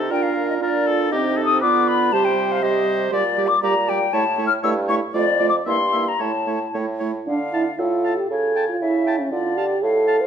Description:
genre	quick classical-period movement for wind quintet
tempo	118 BPM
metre	2/4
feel	rubato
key	D minor from 3.1 s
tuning	A4 = 440 Hz
part	warm oboe	second line	0.0-10.2 s	G4 to A5	-28 LUFS	left 2 dB	none
part	mellow French horn	accompaniment	0.0-10.3 s	G3 to C5	-24 LUFS	right 2 dB	none
part	warm clarinet	accompaniment	0.0-10.2 s	Eb4 to G5	-26 LUFS	right 11 dB	none
part	warm bassoon	bass	0.0-10.2 s	F2 to D3	-25 LUFS	right 3 dB	none
part	hollow concert flute	melody	0.1-10.3 s	A4 to F6	-22 LUFS	left 6 dB	none
room	moderate recital hall reverb, RT60 1.4 s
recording	nothing above 10.7 kHz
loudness	-18 LUFS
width	side -8 dB against mid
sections	0.0-7.3 A section; 7.3-10.3 B section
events	none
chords	0.1 Bb; 1.1 Cm; 1.6 Bdim/D; 2.1 Cm; 3.1 Gm/Bb; 4.1 A; 4.6 A7/G; 5.1 Dm/F; 5.7 Edim/G; 6.2 A; 7.3 Dm; 8.3 A7/C#; 9.3 Dm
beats	| 0.10 0.61 | 1.12 1.62 | 2.13 2.63 | 3.12 3.62 | 4.13 4.63 | 5.14 5.66 | 6.20 6.74 | 7.27 7.79 | 8.30 8.81 | 9.32 9.82

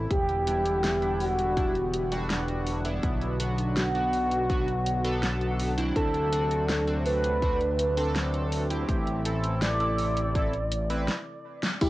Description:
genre	synthwave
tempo	82 BPM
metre	4/4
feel	straight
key	E minor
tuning	A4 = 441 Hz
part	chorused pulse-width pad	sustained chords	0.0-11.9 s	C3 to F#4	-35 LUFS	equal	sidechain pumping, cassette tape
part	fat analog bass	bass	0.0-11.9 s	E1 to D2	-30 LUFS	equal	sidechain pumping
part	expressive synth lead	melody	0.1-11.9 s	F#4 to D5	-29 LUFS	equal	lush chorus, cassette tape, tape echo
part	electronic kick drum	drums	0.1-11.9 s	none	-29 LUFS	equal	cassette tape
part	pop drum kit	drums	0.1-11.9 s	crash cymbal, hi-hat, snare drum	-32 LUFS	equal	cassette tape
part	chorused polysynth	stabs	0.5-11.1 s	G3 to B4	-33 LUFS	right 1 dB	phaser, cassette tape, analog delay
part	string machine, violins	second line	11.8-11.9 s	none	barely audible	none	none
part	wide unison pluck	arpeggios	11.8-11.9 s	E4	-24 LUFS	left 1 dB	cassette tape
room	light reverb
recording	home recording on cassette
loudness	-24 LUFS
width	side -17 dB against mid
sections	0.0-11.8 A section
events	drum fill 11.1-11.8; stop 11.1-11.8; band accent 11.6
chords	0.1 Em7; 3.0 Bm; 6.0 D7; 8.9 Am7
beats	| 0.11 0.84 1.57 2.30 | 3.03 3.77 4.50 5.23 | 5.96 6.69 7.42 8.15 | 8.89 9.62 10.35 11.08 | 11.81

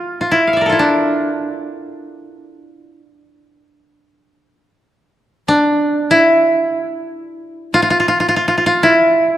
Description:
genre	japanese traditional, Japanese chamber music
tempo	free time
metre	none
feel	none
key	D hirajoshi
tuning	A4 = 441 Hz
part	koto	solo	0.0-9.4 s	D4 to F5	-13 LUFS	equal	none
room	moderate concert hall reverb, RT60 2.0 s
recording	dark, warm production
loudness	-12 LUFS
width	side -12 dB against mid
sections	0.0-9.4 A section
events	none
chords	none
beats	free time

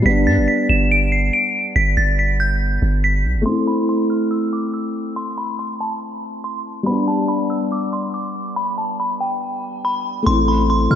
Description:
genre	hip hop, drill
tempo	141 BPM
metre	4/4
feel	half-time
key	A minor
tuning	A4 = 440 Hz
part	felt-muted upright piano	accompaniment	0.0-11.0 s	G3 to E4	-21 LUFS	left 1 dB	low-pass filter
part	long sustained 808-style bass	bass	0.0-3.5, 10.3-11.0 s	G1 to A2	-18 LUFS	equal	none
part	delicate synth tine bell	melody	0.1-11.0 s	G5 to E7	-21 LUFS	equal	chorus, tremolo, low-pass filter, analog delay
room	wet lush hall reverb, RT60 2.7 s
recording	dreamy mix soaked in reverb, low-pass filter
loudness	-17 LUFS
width	side -9 dB against mid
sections	0.0-3.5 A section; 3.5-10.3 B section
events	filter sweep 3.5-10.3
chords	0.1 G; 3.5 Am; 6.9 G; 10.3 Am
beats	| 0.06 0.48 0.91 1.33 | 1.76 2.18 2.61 3.03 | 3.46 3.88 4.31 4.74 | 5.16 5.59 6.01 6.44 | 6.86 7.29 7.71 8.14 | 8.57 8.99 9.42 9.84 | 10.27 10.69

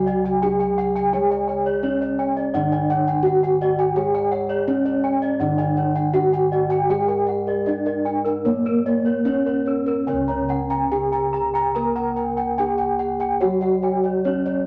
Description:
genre	Javanese gamelan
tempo	72-85 BPM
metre	4/4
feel	straight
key	C# pelog barang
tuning	A4 = 438 Hz
part	gamelan-type bronze metallophone	melody	0.0-14.7 s	A#3+20c to A#4+20c	-24 LUFS	equal	none
part	gamelan-type bronze metallophone	accompaniment	0.0-14.7 s	C#3 to A#3+20c	-30 LUFS	equal	none
part	gamelan-type bossed gongs	arpeggios	0.0-14.7 s	A#4+20c to A#5+20c	-28 LUFS	equal	none
part	gamelan-type bronze metallophone	arpeggios	0.0-14.7 s	A#4+20c to A#5+20c	-29 LUFS	equal	none
part	gamelan-type bossed gongs	bass	0.0-14.7 s	C#2 to A#4+20c	-35 LUFS	equal	none
room	moderate studio reverb, RT60 0.7 s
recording	none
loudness	-21 LUFS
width	mono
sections	0.0-10.1 A section; 10.1-14.7 B section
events	none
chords	none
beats	0.43 | 1.13 1.84 2.55 3.25 | 3.96 4.67 5.40 6.14 | 6.90 7.67 8.46 9.26 | 10.09 10.92 11.76 12.59 | 13.42 14.26

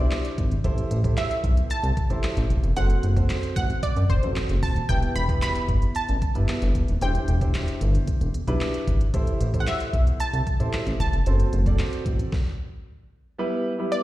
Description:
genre	dance-pop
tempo	113 BPM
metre	4/4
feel	straight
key	unclear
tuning	A4 = 440 Hz
part	analog pluck	melody	0.0-14.0 s	C5 to B5	-29 LUFS	right 1 dB	chorus, tape echo, slapback echo
part	warm baby grand piano	accompaniment	0.0-14.0 s	G3 to D5	-31 LUFS	right 1 dB	sidechain pumping, slapback echo
part	chorused synth bass	bass	0.0-12.2 s	D#1 to F#2	-22 LUFS	equal	sidechain pumping
part	smooth R&B drum kit	drums	0.1-12.4 s	handclaps, hi-hat, kick drum, snare drum	-26 LUFS	equal	none
room	little or no reverb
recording	live gig heard through the venue's PA, recital hall reverb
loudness	-21 LUFS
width	side -16 dB against mid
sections	0.0-13.4 A section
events	stop 12.3-13.4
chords	0.0 Cadd9; 0.6 Am7; 2.8 F#dim; 4.9 Em; 7.0 Cadd9/E; 9.1 Am7; 11.3 F#dim; 13.4 Em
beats	0.11 | 0.64 1.18 1.71 2.24 | 2.77 3.30 3.83 4.36 | 4.89 5.42 5.95 6.49 | 7.02 7.55 8.08 8.61 | 9.14 9.67 10.20 10.73 | 11.26 11.79 12.33 12.86 | 13.39 13.92

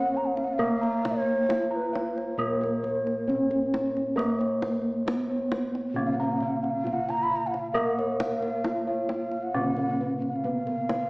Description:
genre	Javanese gamelan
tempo	67 BPM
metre	4/4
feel	straight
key	Bb pelog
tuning	A4 = 438 Hz
part	gamelan-type bronze metallophone	melody	0.0-11.1 s	Bb3 to Bb4	-29 LUFS	equal	none
part	mellow hollow bass bansuri	second line	0.0-11.1 s	Cb5 to Cb6	-30 LUFS	equal	none
part	gamelan-type bronze metallophone	accompaniment	0.0-11.1 s	Db3-30c to Bb3	-34 LUFS	equal	none
part	gamelan-type bossed gongs	arpeggios	0.0-11.1 s	Bb4 to Bb5	-32 LUFS	equal	none
part	gamelan-type bossed gongs	bass	0.0-11.1 s	Bb1 to Bb4	-35 LUFS	equal	none
part	kendang	percussion	0.4-11.1 s	none	-36 LUFS	equal	none
room	wet recital hall reverb, RT60 1.5 s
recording	worn, warbling old tape, cassette tape, warbly pitch drift, small speaker sound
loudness	-25 LUFS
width	side -29 dB against mid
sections	0.0-11.1 A section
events	drum fill 10.2-11.1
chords	none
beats	| 0.59 1.48 2.38 3.27 | 4.17 5.07 5.96 6.86 | 7.75 8.65 9.54 10.44

